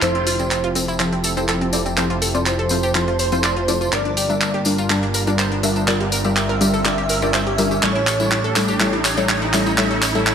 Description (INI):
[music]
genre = progressive house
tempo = 123 BPM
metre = 4/4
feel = straight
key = F major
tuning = A4 = 440 Hz
[part]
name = expressive synth lead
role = melody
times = 0.0-10.3 s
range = C5 to E5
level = -26 LUFS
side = right 1 dB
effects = lush chorus, digital delay
[part]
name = airy dreamy lead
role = second line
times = 0.0-10.3 s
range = C5 to E5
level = -28 LUFS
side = right 2 dB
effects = chorus, cassette tape, digital delay
[part]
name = supersaw pad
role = sustained chords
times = 0.0-10.3 s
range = F3 to A5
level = -27 LUFS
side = right 2 dB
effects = low-pass filter
[part]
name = analog pluck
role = arpeggios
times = 0.0-10.3 s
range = C4 to E5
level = -26 LUFS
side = equal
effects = chorus, digital delay
[part]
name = wide unison pluck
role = stabs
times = 0.0-10.3 s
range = F3 to E5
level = -23 LUFS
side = left 2 dB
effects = wide subtle chorus, digital delay
[part]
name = fat analog bass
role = bass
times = 0.0-10.3 s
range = F1 to A1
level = -25 LUFS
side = right 1 dB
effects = none
[part]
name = deep house drum kit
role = drums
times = 0.0-10.3 s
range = handclaps, hi-hat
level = -22 LUFS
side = right 1 dB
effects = overdrive, high-pass filter on hats, low-pass filter on hats, high-pass filter on snare, low-pass filter on snare, high-pass filter on room, low-pass filter on room
[part]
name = tambourine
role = percussion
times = 0.0-10.3 s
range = none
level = -28 LUFS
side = left 2 dB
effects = none
[part]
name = riser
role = sound effects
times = 0.0-10.3 s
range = none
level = -29 LUFS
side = right 2 dB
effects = none
[sound]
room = light reverb, digital ambience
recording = none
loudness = -16 LUFS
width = side -7 dB against mid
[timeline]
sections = 0.0-10.3 A section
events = build-up 0.0-10.3; drum fill 0.0-10.3; riser 0.0-10.3; filter sweep on supersaw synth 0.0-10.3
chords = 0.0 Fmaj7; 3.9 Gm7; 7.8 A7